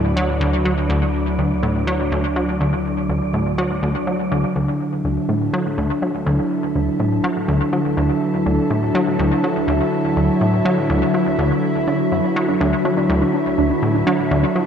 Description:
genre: ambient, sequencer-driven space music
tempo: 123 BPM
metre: 4/4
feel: straight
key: D major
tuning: A4 = 438 Hz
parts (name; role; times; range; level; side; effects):
- lush unison pad; sustained chords; 0.0-14.7 s; D3 to B4; -19 LUFS; equal; chorus
- plucky analog bass; riff; 0.0-14.6 s; D2 to F#3; -21 LUFS; equal; analog delay
- round analog bass; bass; 0.0-4.5 s; D2; -25 LUFS; equal; none
- wind-like tuned noise texture; texture; 0.0-14.7 s; B4 to D5; -32 LUFS; equal; built-in reverb
- warbly dusty pluck; arpeggios; 12.5-14.5 s; D4; -22 LUFS; moving between left 2 dB and right 4 dB; chorus, auto-pan, analog delay
room: wet spring reverb, RT60 2.8 s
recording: echo-heavy mix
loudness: -16 LUFS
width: side -8 dB against mid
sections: 0.0-4.6 A section; 4.6-14.7 B section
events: fade-in on synth texture 4.6-14.7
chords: 0.0 Dadd9

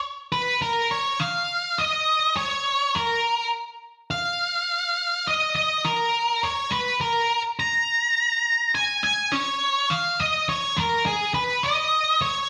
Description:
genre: rock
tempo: 103 BPM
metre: 3/4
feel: straight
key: unclear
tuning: A4 = 439 Hz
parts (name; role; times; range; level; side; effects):
- octave-fuzz lead guitar; melody; 0.3-12.5 s; G#4 to A#5; -23 LUFS; equal; distortion
room: wet stone room reverb, RT60 1.0 s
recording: band playing live in one room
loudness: -23 LUFS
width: mono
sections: 0.6-12.5 A section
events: none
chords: none

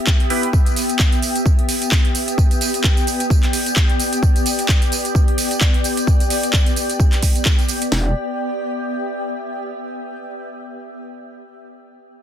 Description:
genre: bass house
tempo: 130 BPM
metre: 4/4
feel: swing 56% on 16ths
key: E minor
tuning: A4 = 443 Hz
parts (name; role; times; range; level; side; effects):
- granular cloud pad; texture; 0.0-9.7 s; B3 to G5; -23 LUFS; left 1 dB; built-in reverb, sidechain pumping
- garage drum kit; drums; 0.1-7.9 s; handclaps, hi-hat, tambourine; -21 LUFS; right 2 dB; overdrive, small room ambience
- house drum kit; drums; 0.1-8.0 s; kick drum, snare drum; -16 LUFS; equal; small room ambience
- band-passed chord stab; stabs; 0.3-0.5 s; B3 to B4; -24 LUFS; right 1 dB; phaser, lush chorus, vintage 12-bit sampler grit, sidechain pumping, ping-pong delay
- metallic wobble bass; bass; 7.9-8.1 s; E1; -19 LUFS; equal; chorus, overdrive, sidechain pumping
room: digital ambience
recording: dense, heavily limited modern master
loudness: -15 LUFS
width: side -10 dB against mid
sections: 0.0-7.9 A section; 7.9-9.8 B section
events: none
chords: 0.0 Em

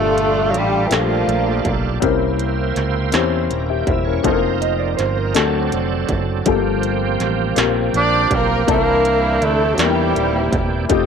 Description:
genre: slow gospel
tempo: 54 BPM (dotted quarters)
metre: 6/8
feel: straight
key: unclear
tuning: A4 = 440 Hz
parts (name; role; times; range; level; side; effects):
- warm studio string section; melody; 0.0-2.0, 8.0-10.9 s; A3 to D5; -21 LUFS; left 4 dB; none
- warm tenor saxophone; melody; 0.0-1.8, 8.0-10.6 s; E3 to D4; -19 LUFS; right 4 dB; none
- warm baby grand piano; accompaniment; 0.0-11.1 s; G2 to A5; -21 LUFS; left 12 dB; none
- bright tonewheel organ; sustained chords; 0.0-11.1 s; E3 to Bb5; -24 LUFS; right 10 dB; slow rotary speaker, overdrive, chorus vibrato
- fingered electric bass; bass; 0.0-11.1 s; Eb1 to E2; -22 LUFS; right 1 dB; none
- industrial drum kit; drums; 0.2-11.1 s; hi-hat, kick drum, snare drum; -23 LUFS; right 1 dB; distortion
- mellow electric guitar; second line; 4.6-5.5 s; Bb4 to Eb5; -24 LUFS; right 11 dB; slapback echo
room: moderate spring reverb, RT60 2.7 s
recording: 1960s-style stereo with parts hard left and right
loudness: -15 LUFS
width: side -6 dB against mid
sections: 0.0-11.1 A section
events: none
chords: 0.0 Gm9; 2.0 C7b9; 4.2 F7sus4; 5.4 D7; 6.5 Gm11; 8.7 C13

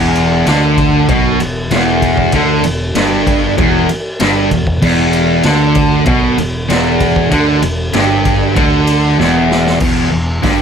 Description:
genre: garage rock duo or trio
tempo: 96 BPM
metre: 4/4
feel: straight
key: E minor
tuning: A4 = 441 Hz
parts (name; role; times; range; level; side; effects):
- fuzz guitar; riff; 0.0-10.6 s; E2 to D3; -12 LUFS; equal; distortion
- fuzz picked electric bass; bass; 0.0-10.6 s; E1 to D2; -20 LUFS; equal; overdrive
- raw garage drum kit; drums; 0.2-10.6 s; crash cymbal, hi-hat, kick drum, ride cymbal, snare drum; -17 LUFS; equal; none
room: light reverb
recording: none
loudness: -10 LUFS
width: side -7 dB against mid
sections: 0.0-9.8 A section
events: drum fill 9.2-9.8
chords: 0.0 Em

